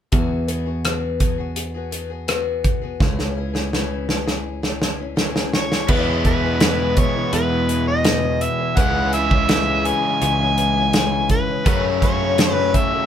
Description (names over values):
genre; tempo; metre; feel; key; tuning
folk rock and heartland rock; 83 BPM; 4/4; straight; E major; A4 = 440 Hz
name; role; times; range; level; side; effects
picked old ladder-braced acoustic guitar; accompaniment; 0.1-13.1 s; F#2 to G#4; -26 LUFS; left 8 dB; none
picked electric bass; bass; 0.1-12.8 s; C#2 to F#2; -25 LUFS; equal; none
natural country drum kit; drums; 0.1-12.9 s; crash cymbal, hi-hat, kick drum, rim click, snare drum; -20 LUFS; right 1 dB; none
overdriven harmonica; melody; 5.5-13.1 s; B4 to G#5; -21 LUFS; equal; none
crunchy overdriven guitar; riff; 5.9-13.1 s; E2 to F#4; -23 LUFS; right 1 dB; none
room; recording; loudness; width
moderate studio ambience, RT60 0.5 s; band playing live in one room; -17 LUFS; side -9 dB against mid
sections
0.1-5.9 A section; 5.9-13.1 B section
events
drum fill 3.0-5.9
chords
0.1 Eadd9; 3.0 C#m; 5.9 Eadd9; 8.8 C#m; 11.7 F#m